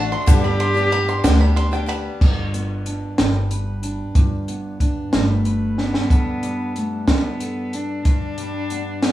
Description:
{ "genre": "indie folk with a building arrangement", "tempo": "62 BPM (dotted quarters)", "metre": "6/8", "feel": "straight", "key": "G major", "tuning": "A4 = 440 Hz", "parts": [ { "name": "warm cello", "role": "melody", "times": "0.0-1.6, 5.1-9.1 s", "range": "A3 to G4", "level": "-24 LUFS", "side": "equal", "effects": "none" }, { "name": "picked old ladder-braced acoustic guitar", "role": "accompaniment", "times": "0.0-2.2 s", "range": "G2 to G4", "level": "-25 LUFS", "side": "left 4 dB", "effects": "none" }, { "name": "bluegrass banjo", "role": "arpeggios", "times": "0.0-2.2 s", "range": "G5 to C6", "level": "-27 LUFS", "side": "right 3 dB", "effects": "none" }, { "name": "upright bass", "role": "bass", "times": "0.0-6.0 s", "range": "G1 to D2", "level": "-22 LUFS", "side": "equal", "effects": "none" }, { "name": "compact cocktail drum kit", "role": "drums", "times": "0.3-9.1 s", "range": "crash cymbal, hi-hat, kick drum, ride cymbal, snare drum", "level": "-18 LUFS", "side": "equal", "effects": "none" }, { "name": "egg shaker", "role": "percussion", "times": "0.3-2.0 s", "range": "none", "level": "-37 LUFS", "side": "right 8 dB", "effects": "none" }, { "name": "fingerpicked steel-string acoustic guitar", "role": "accompaniment", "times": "2.2-9.1 s", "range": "G2 to B4", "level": "-27 LUFS", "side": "equal", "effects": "none" } ], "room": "light reverb", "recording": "band playing live in one room, small room ambience", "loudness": "-17 LUFS", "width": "side -14 dB against mid", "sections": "0.0-2.2 A section; 2.2-6.1 B section; 6.1-9.1 C section", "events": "drum fill 5.8-6.1", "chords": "0.3 G; 6.1 Gadd9" }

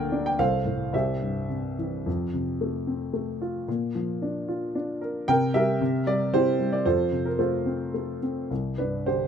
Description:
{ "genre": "classical, lyrical solo piano", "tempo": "104-116 BPM", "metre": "3/4", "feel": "rubato", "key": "F major", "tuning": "A4 = 440 Hz", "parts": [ { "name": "dark baby grand piano", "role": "solo", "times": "0.0-9.3 s", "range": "C2 to G5", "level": "-24 LUFS", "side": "equal", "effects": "none" } ], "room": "light reverb", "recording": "close, detailed microphones", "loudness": "-24 LUFS", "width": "side -8 dB against mid", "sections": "0.0-8.5 A section", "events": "none", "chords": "0.4 F/C; 0.9 C; 2.1 F; 3.7 Bb; 5.3 C5; 5.8 C7; 6.8 F; 8.5 Csus2" }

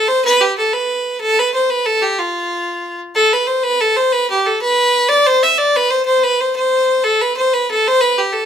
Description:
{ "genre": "celtic folk", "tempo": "124 BPM (dotted quarters)", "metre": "6/8", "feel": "straight", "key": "unclear", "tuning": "A4 = 436 Hz", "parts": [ { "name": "bright fiddle", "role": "solo", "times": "0.0-8.5 s", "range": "F4 to E5", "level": "-13 LUFS", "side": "equal", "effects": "none" } ], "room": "moderate studio reverb, RT60 0.6 s", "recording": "band playing live in one room", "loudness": "-13 LUFS", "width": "side -8 dB against mid", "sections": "0.0-3.1 A section; 3.1-8.5 A section", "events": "none", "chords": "none" }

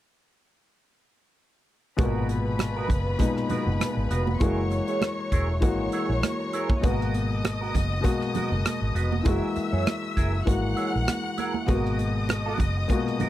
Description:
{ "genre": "lush 1970s-style soul", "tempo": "99 BPM", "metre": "4/4", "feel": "swing 54% on 16ths", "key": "G# minor", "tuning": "A4 = 439 Hz", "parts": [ { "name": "clear studio string section", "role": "second line", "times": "2.0-13.3 s", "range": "B4 to F#6", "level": "-33 LUFS", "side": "left 2 dB", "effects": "none" }, { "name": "warm baby grand piano", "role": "accompaniment", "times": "2.0-13.3 s", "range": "A#2 to F#4", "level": "-28 LUFS", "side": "left 3 dB", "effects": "none" }, { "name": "electric guitar through a small old amp", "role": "riff", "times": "2.0-13.3 s", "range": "B3 to C#5", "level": "-33 LUFS", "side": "right 6 dB", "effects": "wah" }, { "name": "vintage muted fingered electric bass", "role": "bass", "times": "2.0-13.2 s", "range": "E1 to F#2", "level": "-27 LUFS", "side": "equal", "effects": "none" }, { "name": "modern studio drum kit", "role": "drums", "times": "2.0-13.3 s", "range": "hi-hat, kick drum, rim click", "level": "-26 LUFS", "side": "equal", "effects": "none" }, { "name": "congas", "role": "percussion", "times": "2.0-13.3 s", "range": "none", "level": "-33 LUFS", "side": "right 8 dB", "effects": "none" } ], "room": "little or no reverb", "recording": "dry, close 1970s-style studio recording", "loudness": "-23 LUFS", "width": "side -14 dB against mid", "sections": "2.0-13.3 A section", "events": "none", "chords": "2.0 G#m9; 4.4 F#9; 6.8 G#m9; 9.3 F#9; 11.7 G#m9" }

